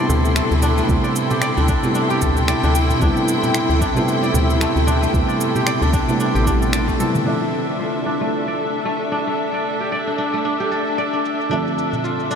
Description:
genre	organic downtempo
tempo	113 BPM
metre	4/4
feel	swing 57% on 16ths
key	D dorian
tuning	A4 = 440 Hz
part	felt-muted upright piano	accompaniment	0.0-12.4 s	C3 to E5	-22 LUFS	right 2 dB	sidechain pumping, ping-pong delay, shimmer reverb
part	rich studio string section	sustained chords	0.0-12.4 s	D4 to C6	-23 LUFS	left 1 dB	sidechain pumping, shimmer reverb
part	kora	arpeggios	0.0-12.4 s	A3 to D5	-23 LUFS	left 1 dB	low-pass filter, ping-pong delay, shimmer reverb
part	woody FM bass	bass	0.1-6.9 s	A1 to D2	-19 LUFS	equal	tube saturation, sidechain pumping
part	afro-pop drum kit	drums	0.1-12.4 s	cabasa, finger snaps, toms	-29 LUFS	equal	low-pass filter on perc, low-pass filter on snare, low-pass filter on toms
part	darbuka	percussion	0.1-7.2, 11.8-12.0 s	none	-30 LUFS	right 2 dB	none
part	electronic kick drum	drums	0.9-7.0 s	none	-22 LUFS	equal	none
part	drifting glass-harmonics texture	texture	8.8-12.4 s	A4	-33 LUFS	right 5 dB	none
room	wet huge ambient reverb, RT60 7.5 s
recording	dreamy mix soaked in reverb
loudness	-16 LUFS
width	side -7 dB against mid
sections	0.0-7.3 A section; 7.3-12.4 B section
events	drum fill 7.0; filter sweep on drum 7.3-12.4; filter sweep on kora 7.3-12.4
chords	0.0 Am7; 7.3 Dm7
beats	0.36 | 0.89 1.42 1.95 2.48 | 3.02 3.55 4.08 4.61 | 5.14 5.67 6.20 6.73 | 7.26 7.79 8.32 8.86 | 9.39 9.92 10.45 10.98 | 11.51 12.04

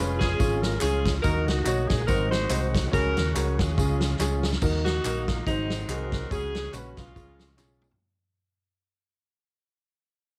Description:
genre	uptempo gospel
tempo	142 BPM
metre	4/4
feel	swing 56% on 8ths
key	unclear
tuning	A4 = 440 Hz
part	warm saxophone section	melody	0.0-7.8 s	F#3 to B#4	-32 LUFS	equal	cassette tape
part	clear grand piano	accompaniment	0.0-7.8 s	G#2 to C#5	-34 LUFS	equal	none
part	overdriven tonewheel organ	sustained chords	0.0-8.0 s	D#3 to F#4	-41 LUFS	equal	none
part	hollow-body short-scale fingered electric bass	bass	0.0-7.9 s	E#1 to D#2	-31 LUFS	equal	none
part	swinging big-band drum kit	drums	0.2-8.0 s	crash cymbal, hi-hat, kick drum, snare drum, toms	-31 LUFS	equal	cassette tape
part	tambourine and handclaps	percussion	0.2-7.9 s	none	-41 LUFS	equal	none
room	little or no reverb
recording	home recording on cassette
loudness	-26 LUFS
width	mono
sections	0.0-4.6 A section; 4.6-8.0 B section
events	drum fill 4.2-4.6, 7.6-8.0; fade-out 4.6-8.0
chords	0.0 C#/E#; 1.2 D#m; 2.1 G#7; 2.9 C#sus4; 3.8 C#; 4.6 D#m; 5.5 G#7; 6.3 C#sus4; 7.2 C#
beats	0.40 0.82 | 1.24 1.66 2.08 2.51 | 2.93 3.35 3.77 4.20 | 4.62 5.04 5.47 5.89 | 6.31 6.73 7.16 7.58

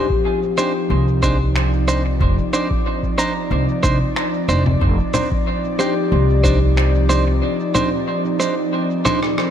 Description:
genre	ambient dub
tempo	92 BPM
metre	4/4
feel	straight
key	unclear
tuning	A4 = 440 Hz
part	airy breathy pad	sustained chords	0.1-9.5 s	F3 to D5	-22 LUFS	right 1 dB	chorus
part	Celtic harp	arpeggios	0.0-8.1 s	G4 to D6	-26 LUFS	left 7 dB	dub echo
part	clean electric guitar	stabs	0.0-9.2 s	D4 to C5	-22 LUFS	right 2 dB	low-pass filter, dub echo
part	electronic kick drum	drums	0.1-6.6 s	none	-22 LUFS	equal	none
part	electronic shaker, finger snaps, congas and rim click	drums	0.6-9.5 s	none	-26 LUFS	left 2 dB	dub echo
part	upright bass	bass	0.9-7.4 s	F1 to C2	-17 LUFS	equal	none
room	moderate echo chamber reverb, RT60 2.1 s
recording	none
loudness	-16 LUFS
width	side -9 dB against mid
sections	0.0-9.5 A section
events	break 7.4-9.5; drum fill 9.1-9.5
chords	0.0 Cmadd9/F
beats	0.25 0.90 1.55 | 2.21 2.86 3.51 4.16 | 4.82 5.47 6.12 6.77 | 7.42 8.08 8.73 9.38

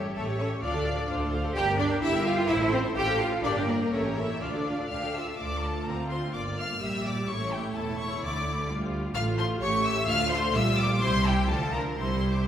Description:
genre	quick classical-period movement for string orchestra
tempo	128 BPM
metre	2/4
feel	straight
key	D minor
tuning	A4 = 440 Hz
part	rich chamber violin section	melody	0.0-12.5 s	F4 to F6	-32 LUFS	left 2 dB	none
part	clear studio violin section	second line	0.0-12.5 s	G4 to G5	-34 LUFS	left 3 dB	none
part	clear studio viola section	accompaniment	0.0-12.4 s	F3 to G5	-31 LUFS	right 1 dB	none
part	clear chamber double bass section	bass	0.0-12.5 s	E1 to D2	-32 LUFS	right 1 dB	none
part	clear symphonic cello section	bass	0.2-12.5 s	D2 to G4	-31 LUFS	right 2 dB	none
room	wet scoring stage reverb, RT60 1.9 s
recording	heard from further back in the room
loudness	-25 LUFS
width	side -10 dB against mid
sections	0.0-5.4 A section; 5.4-12.5 A section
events	none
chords	0.0 A7; 0.6 Dm; 1.6 Gm; 2.0 Edim/G; 2.5 Am; 3.0 F/A; 3.4 Gm; 3.9 A7; 4.4 Dm; 6.3 Gm; 7.3 A5; 8.2 Dm; 9.2 F/A; 9.6 A7; 10.1 Dm; 10.6 Gm7/Bb; 11.0 C; 11.5 Dm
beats	0.15 | 0.62 1.09 | 1.56 2.02 | 2.49 2.97 | 3.44 3.92 | 4.41 4.90 | 5.39 5.87 | 6.34 6.82 | 7.29 7.75 | 8.22 8.68 | 9.15 9.62 | 10.08 10.55 | 11.02 11.50 | 11.98

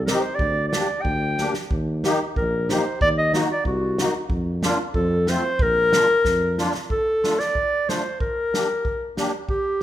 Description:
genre	alpine folk, alpine dance band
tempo	92 BPM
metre	2/4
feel	straight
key	Bb major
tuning	A4 = 440 Hz
part	mellow clarinet	melody	0.0-9.8 s	Gb4 to G5	-21 LUFS	equal	none
part	mellow tuba	bass	0.0-6.7 s	Bb1 to F2	-26 LUFS	equal	none
part	musette accordion	accompaniment	0.1-9.3 s	A3 to G4	-27 LUFS	left 1 dB	none
part	unplugged drum kit	drums	0.1-9.8 s	kick drum, snare drum	-27 LUFS	right 1 dB	none
room	moderate recital hall reverb, RT60 1.4 s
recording	minimal, uncompressed stereo recording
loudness	-20 LUFS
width	side -12 dB against mid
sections	0.0-6.9 A section; 6.9-9.8 B section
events	drum fill 1.4-1.7, 6.3-6.9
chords	0.4 Gm/D; 1.7 Eb; 3.0 Ebm; 4.3 Bb/F; 4.9 F; 5.6 Bb; 6.9 Dm; 8.2 Gm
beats	| 0.40 1.05 | 1.71 2.37 | 3.01 3.66 | 4.30 4.95 | 5.60 6.25 | 6.90 7.56 | 8.21 8.85 | 9.49

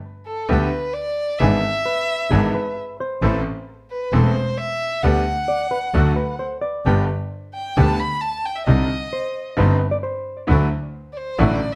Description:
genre	tango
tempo	132 BPM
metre	4/4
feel	rubato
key	G major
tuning	A4 = 442 Hz
part	warm violin	second line	0.3-11.8 s	A4 to B5	-27 LUFS	equal	none
part	bright concert grand piano	accompaniment	0.5-11.6 s	E1 to A4	-26 LUFS	equal	none
part	bandoneon	stabs	0.5-11.6 s	A3 to A4	-31 LUFS	equal	none
part	warm double bass	bass	0.5-11.6 s	E1 to D2	-22 LUFS	equal	none
part	hollow-body jazz guitar	second line	1.9-10.9 s	G#4 to D5	-29 LUFS	equal	analog delay
room	light reverb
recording	dark, warm production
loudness	-21 LUFS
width	mono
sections	0.0-11.8 A section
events	violin solo 0.0-11.8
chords	0.0 Gadd9; 1.4 E7/G#; 3.2 Am; 5.0 G/D; 5.9 D; 6.9 G; 8.7 Cmadd9; 10.5 Dadd9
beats	0.04 0.50 0.95 | 1.41 1.86 2.32 2.77 | 3.22 3.68 4.13 4.58 | 5.04 5.49 5.95 6.40 | 6.86 7.32 7.77 8.22 | 8.68 9.13 9.58 10.04 | 10.49 10.94 11.39

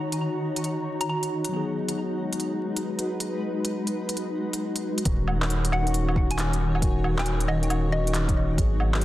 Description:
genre	future garage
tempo	136 BPM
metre	4/4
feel	swing 66% on 16ths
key	Eb minor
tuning	A4 = 440 Hz
part	tine electric piano	accompaniment	0.0-9.0 s	Eb3 to Ab4	-31 LUFS	left 2 dB	lush chorus, sidechain pumping, digital delay
part	granular cloud pad	sustained chords	0.0-9.0 s	Eb3 to Db5	-30 LUFS	equal	built-in reverb, sidechain pumping
part	wind-like tuned noise texture	texture	0.0-5.1 s	Bb5	-44 LUFS	right 2 dB	built-in reverb
part	organic electronic drum kit	drums	0.1-9.0 s	handclaps, hi-hat, woodblock	-31 LUFS	equal	overdrive
part	mallet-like synth pluck	melody	1.0-1.2, 5.7-8.6 s	Eb5 to Bb5	-34 LUFS	left 1 dB	chorus, tape echo
part	soft dub sub bass	bass	5.1-9.0 s	Eb1 to Ab1	-26 LUFS	equal	sidechain pumping
part	electronic kick drum	drums	5.1-8.7 s	none	-25 LUFS	equal	overdrive
room	light reverb, digital ambience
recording	dense, heavily limited modern master, vinyl crackle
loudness	-24 LUFS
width	side -15 dB against mid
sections	0.0-5.1 A section; 5.1-9.0 B section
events	none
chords	0.0 Ebm7; 1.5 Abm7; 5.1 Ebm7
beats	0.20 0.64 1.08 | 1.52 1.97 2.41 2.85 | 3.29 3.73 4.17 4.61 | 5.05 5.49 5.93 6.38 | 6.82 7.26 7.70 8.14 | 8.58 9.02

